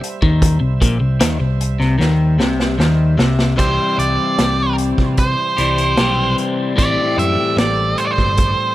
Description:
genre	psychedelic rock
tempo	75 BPM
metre	4/4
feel	straight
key	C major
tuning	A4 = 440 Hz
part	bright tonewheel organ	sustained chords	0.0-8.7 s	G3 to E5	-30 LUFS	right 6 dB	slow rotary speaker, overdrive
part	electric guitar at the edge of break-up	riff	0.0-8.7 s	A2 to G4	-18 LUFS	left 3 dB	phaser
part	picked electric bass	bass	0.0-8.5 s	G1 to C3	-19 LUFS	equal	none
part	vintage drum kit	drums	0.0-8.6 s	hi-hat, kick drum, snare drum	-18 LUFS	equal	none
part	octave-fuzz lead guitar	melody	3.6-8.7 s	C5 to E5	-18 LUFS	right 3 dB	distortion, analog delay
room	studio ambience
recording	none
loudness	-14 LUFS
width	side -15 dB against mid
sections	0.0-3.6 A section; 3.6-8.7 B section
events	drum fill 2.0-3.6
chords	0.0 C; 6.8 Am7

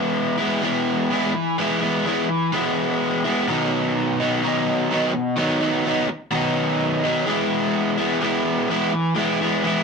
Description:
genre	rock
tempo	63 BPM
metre	4/4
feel	straight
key	unclear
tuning	A4 = 441 Hz
part	overdriven electric guitar	solo	0.0-9.8 s	B2 to E4	-19 LUFS	equal	none
room	wet small room reverb, RT60 0.5 s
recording	band playing live in one room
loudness	-19 LUFS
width	side -5 dB against mid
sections	0.0-9.8 A section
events	none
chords	0.0 E; 3.5 B; 7.3 E

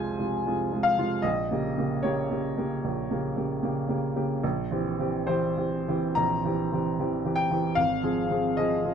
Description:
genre	classical, romantic character piece for solo piano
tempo	65-77 BPM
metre	4/4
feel	rubato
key	unclear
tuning	A4 = 441 Hz
part	warm baby grand piano	solo	0.0-8.9 s	Ab1 to Bb5	-25 LUFS	equal	none
room	light reverb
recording	dark, warm production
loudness	-25 LUFS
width	side -7 dB against mid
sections	0.0-8.9 A section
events	none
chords	0.0 Fm; 1.2 Gdim/Bb; 4.4 C7/Bb; 7.8 Fm/Ab

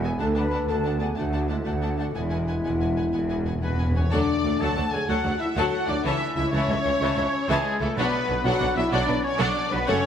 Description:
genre	cinematic, heroic adventure film score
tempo	125 BPM (dotted quarters)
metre	12/8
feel	straight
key	unclear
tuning	A4 = 442 Hz
part	warm studio violin section	melody	0.0-10.1 s	G#4 to A5	-33 LUFS	left 3 dB	none
part	mellow clarinet	second line	0.0-3.6 s	G#3 to D4	-37 LUFS	left 1 dB	none
part	mellow flute section	second line	0.0-10.1 s	G#4 to B5	-35 LUFS	equal	none
part	rich symphonic viola section	accompaniment	0.0-10.0 s	E3 to A4	-31 LUFS	right 1 dB	none
part	dark French horn section	sustained chords	0.0-10.1 s	G#3 to B4	-28 LUFS	left 3 dB	none
part	concert harp	arpeggios	0.0-10.1 s	F#2 to C#6	-35 LUFS	left 7 dB	none
part	rich symphonic double bass section	bass	0.0-9.9 s	E1 to D2	-31 LUFS	right 2 dB	none
part	warm symphonic cello section	bass	0.0-9.9 s	C#2 to B2	-32 LUFS	right 2 dB	none
part	warm tuba	bass	0.0-9.9 s	E1 to D2	-32 LUFS	right 3 dB	none
part	rich symphonic violin section	second line	0.1-10.0 s	E4 to A5	-34 LUFS	left 3 dB	none
part	timpani	percussion	2.1-4.1, 8.0-8.4 s	E2 to B2	-30 LUFS	left 1 dB	none
part	warm oboe	second line	3.6-10.1 s	G#4 to A5	-32 LUFS	right 1 dB	none
room	moderate scoring stage reverb, RT60 1.8 s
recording	none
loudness	-22 LUFS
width	side -8 dB against mid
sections	0.0-4.1 A section; 4.1-10.1 B section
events	timpani fill 2.1-4.1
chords	0.2 D; 2.1 Eadd9; 4.1 D; 6.0 A/C#; 8.0 Bm

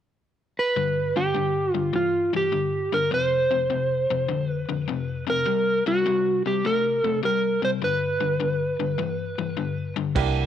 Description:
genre	electric blues shuffle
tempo	102 BPM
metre	4/4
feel	swing 68% on 8ths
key	unclear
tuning	A4 = 439 Hz
part	electric slide guitar	melody	0.6-9.9 s	F4 to C5	-23 LUFS	right 2 dB	none
part	overdriven electric guitar	riff	0.8-10.1 s	F2 to A3	-27 LUFS	left 8 dB	none
part	bright grand piano	accompaniment	10.2-10.5 s	Bb3 to G4	-25 LUFS	right 12 dB	none
part	vintage muted fingered electric bass	bass	10.2-10.5 s	C2	-24 LUFS	right 1 dB	none
part	vintage drum kit	drums	10.2-10.3 s	crash cymbal, kick drum	-26 LUFS	right 2 dB	none
room	light reverb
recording	1960s-style stereo with parts hard left and right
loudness	-22 LUFS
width	side -10 dB against mid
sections	0.8-10.2 A section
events	none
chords	0.0 N.C.; 0.8 G5; 3.1 F5; 5.5 C5; 7.8 G

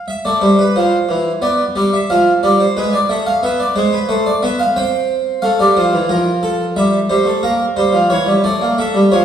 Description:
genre	classical, baroque-style two-part invention for harpsichord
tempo	90 BPM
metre	4/4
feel	straight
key	unclear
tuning	A4 = 442 Hz
part	harpsichord	solo	0.0-9.2 s	E3 to G5	-12 LUFS	right 1 dB	none
room	wet recital hall reverb, RT60 1.6 s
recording	heard from further back in the room, small room ambience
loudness	-12 LUFS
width	side -9 dB against mid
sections	0.0-9.2 A section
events	none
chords	0.1 Am; 1.4 Bdim; 2.8 E7/G#; 4.1 Am; 5.4 Dm; 6.8 Edim/G; 8.1 A7/E

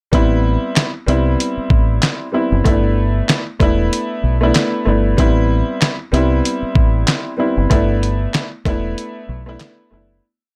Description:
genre	hip hop, boom-bap hip-hop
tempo	95 BPM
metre	4/4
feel	swing 57% on 16ths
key	G major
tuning	A4 = 439 Hz
part	warm upright piano	accompaniment	0.1-10.2 s	G3 to E4	-21 LUFS	equal	none
part	deep dub fingered electric bass	bass	0.1-10.2 s	E1 to C2	-19 LUFS	equal	none
part	dusty soul sampler-style drum kit	drums	0.1-9.8 s	handclaps, hi-hat, kick drum, snare drum	-18 LUFS	equal	none
room	little or no reverb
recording	none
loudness	-16 LUFS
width	mono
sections	0.1-10.2 verse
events	fade-out 7.7-10.2; break 9.0-10.2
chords	0.1 Am9; 2.7 G6; 5.2 Am9; 7.7 G6

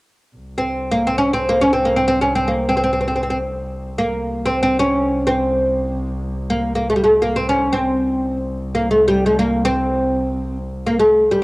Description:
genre	Turkish makam ensemble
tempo	free time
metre	none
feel	none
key	C makam hicaz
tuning	A4 = 441 Hz
part	rich double bass	drone	0.4-11.4 s	C2	-26 LUFS	equal	stereo widening, cassette tape
part	oud	melody	0.6-11.4 s	G3 to Db4	-16 LUFS	equal	cassette tape
room	moderate spring reverb, RT60 2.4 s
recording	home recording on cassette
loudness	-16 LUFS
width	side -22 dB against mid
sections	0.4-11.4 A section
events	none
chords	none

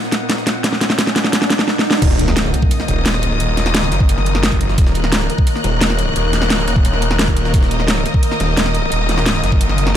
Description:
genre	dark technical drum and bass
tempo	174 BPM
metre	4/4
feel	straight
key	Eb minor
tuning	A4 = 440 Hz
part	metallic inharmonic drone	sustained chords	0.0-10.0 s	Bb2 to Gb5	-24 LUFS	left 2 dB	chorus, built-in reverb, sidechain pumping
part	jungle sampler-style drum kit	drums	0.0-9.9 s	hi-hat, snare drum	-29 LUFS	right 1 dB	none
part	riser and impact	sound effects	0.1-3.4 s	none	-22 LUFS	equal	none
part	dark symphonic string section	texture	0.0-10.0 s	Bb3 to Gb6	-23 LUFS	left 2 dB	sidechain pumping
part	dubstep drum kit	drums	0.1-9.9 s	crash cymbal, hi-hat, snare drum	-18 LUFS	equal	none
part	snarling distorted saw bass	bass	2.0-10.0 s	Eb1 to Gb1	-18 LUFS	equal	distortion, overdrive, sidechain pumping
part	electronic kick drum	drums	2.0-9.6 s	none	-14 LUFS	equal	none
room	digital ambience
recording	none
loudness	-13 LUFS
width	side -10 dB against mid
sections	0.0-2.0 A section; 2.0-10.0 B section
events	build-up 0.0-2.0; drum fill 0.0-1.7, 1.7-2.0; riser 0.1-2.0; drop 2.0-10.0; impact 2.0-3.4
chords	0.0 Eb5

